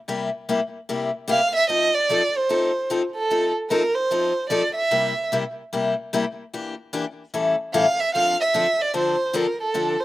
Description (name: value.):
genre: jazz.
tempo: 149 BPM.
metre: 4/4.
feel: swing 62% on 8ths.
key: C mixolydian.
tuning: A4 = 441 Hz.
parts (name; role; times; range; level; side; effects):
picked steel-string acoustic guitar; accompaniment; 0.1-10.0 s; A2 to A4; -24 LUFS; left 3 dB; slapback echo.
dark violin; melody; 1.3-5.3, 7.7-10.0 s; A4 to F5; -20 LUFS; right 2 dB; none.
room: little or no reverb.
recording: recorded outdoors, with no room sound.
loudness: -20 LUFS.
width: side -15 dB against mid.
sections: 0.0-10.0 A section.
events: none.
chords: 0.0 C7; 1.7 F7; 4.9 C7; 6.5 Em7b5; 7.3 A7; 8.1 Dm7.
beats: | 0.07 0.47 0.88 1.28 | 1.68 2.09 2.49 2.89 | 3.30 3.70 4.10 4.51 | 4.91 5.31 5.72 6.12 | 6.52 6.93 7.33 7.73 | 8.14 8.54 8.94 9.35 | 9.75.